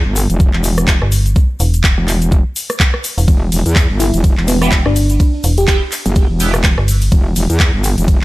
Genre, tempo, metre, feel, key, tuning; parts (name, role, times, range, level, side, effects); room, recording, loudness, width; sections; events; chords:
bass house; 125 BPM; 4/4; swing 57% on 16ths; E minor; A4 = 442 Hz
metallic wobble bass; bass; 0.0-8.2 s; E1 to E2; -15 LUFS; equal; chorus, overdrive, sidechain pumping
big-room dance drum kit; drums; 0.2-8.2 s; handclaps, hi-hat, ride cymbal, rim click; -20 LUFS; equal; small room ambience
egg shaker; percussion; 0.2-8.2 s; -26 LUFS; left 3 dB
electronic kick drum; drums; 0.4-8.2 s; -12 LUFS; equal; overdrive, small room ambience
metallic FM bass; bass; 1.0-7.1 s; E1 to G1; -13 LUFS; equal; tube saturation, sidechain pumping
bell-like FM electric piano; melody; 4.0-5.8 s; B3 to G4; -19 LUFS; equal; chorus, digital delay
band-passed chord stab; stabs; 4.6-6.5 s; B3 to G4; -24 LUFS; right 4 dB; phaser, ensemble chorus, sidechain pumping, digital delay
digital ambience; lossy compression artefacts; -11 LUFS; side -18 dB against mid
0.0-8.2 A section
0.0 Em